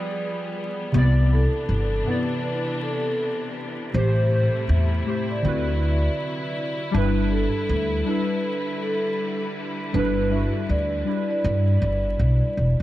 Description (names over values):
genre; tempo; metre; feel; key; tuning
lo-fi hip hop; 80 BPM; 4/4; swing 62% on 16ths; G major; A4 = 440 Hz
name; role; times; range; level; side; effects
vibraphone with soft mallets; melody; 0.0-12.8 s; A4 to E5; -28 LUFS; right 1 dB; low-pass filter, tape echo
warbly lo-fi synth keys; accompaniment; 0.0-12.8 s; A2 to D5; -26 LUFS; equal; chorus, low-pass filter
clear studio string section; sustained chords; 0.0-12.8 s; C3 to B4; -32 LUFS; left 1 dB; low-pass filter
upright bass; bass; 0.9-12.8 s; E1 to G2; -21 LUFS; equal; none
room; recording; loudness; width
small room ambience; vinyl crackle; -21 LUFS; side -14 dB against mid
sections
0.0-12.8 A section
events
none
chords
0.0 G7b9; 0.9 Cmaj9; 3.9 Am7; 5.4 D13; 6.9 G6